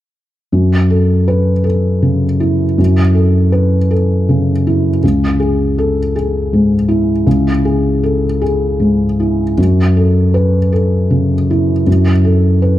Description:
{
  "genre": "neoclassical minimalist piano",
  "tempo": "80 BPM",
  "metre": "3/4",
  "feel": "rubato",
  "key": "unclear",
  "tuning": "A4 = 439 Hz",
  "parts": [
    { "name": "felt-muted upright piano", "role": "solo", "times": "0.5-12.8 s", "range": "C#2 to B4", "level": "-11 LUFS", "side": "equal", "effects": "none" }
  ],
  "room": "light reverb",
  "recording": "dark, warm production",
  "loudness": "-11 LUFS",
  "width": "side -13 dB against mid",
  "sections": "0.5-9.6 A section; 9.6-12.8 B section",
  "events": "none",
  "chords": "0.5 F#m7; 5.0 C#m; 9.6 F#m7"
}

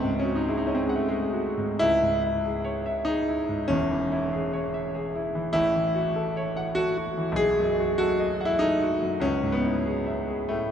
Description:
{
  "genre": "classical, romantic character piece for solo piano",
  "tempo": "96 BPM",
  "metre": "3/4",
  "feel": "rubato",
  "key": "C# minor",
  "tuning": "A4 = 440 Hz",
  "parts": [
    { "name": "clear grand piano", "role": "solo", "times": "0.0-10.7 s", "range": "E1 to F#5", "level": "-23 LUFS", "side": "equal", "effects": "none" }
  ],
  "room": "wet cathedral reverb, RT60 6.0 s",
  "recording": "in a vast, echoing space, nothing above 10.6 kHz",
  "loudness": "-23 LUFS",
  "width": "side -8 dB against mid",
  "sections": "0.0-10.7 A section",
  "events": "none",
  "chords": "0.0 G#5/C#; 1.8 C#m; 3.7 C#m/E; 5.5 F#m7/A; 7.4 B7; 9.2 C#m7"
}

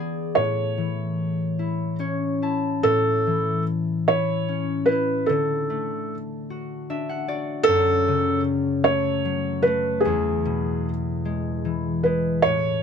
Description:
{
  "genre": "children's music, lullaby",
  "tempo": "50 BPM (dotted quarters)",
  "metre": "6/8",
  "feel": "rubato",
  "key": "A major",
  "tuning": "A4 = 440 Hz",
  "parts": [
    { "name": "felt-muted upright piano", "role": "melody", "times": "0.0-12.8 s", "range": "G#4 to D5", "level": "-22 LUFS", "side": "right 2 dB", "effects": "none" },
    { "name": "concert harp", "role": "accompaniment", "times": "0.0-12.8 s", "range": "E2 to A5", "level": "-24 LUFS", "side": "left 3 dB", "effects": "none" }
  ],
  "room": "light reverb",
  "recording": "close, detailed microphones",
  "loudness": "-21 LUFS",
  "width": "side -6 dB against mid",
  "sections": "0.0-2.8 A section; 2.8-12.8 A section",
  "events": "harp fill 1.6-2.8, 6.5-7.7",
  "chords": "0.4 A; 5.3 D; 7.7 F#m; 10.0 E"
}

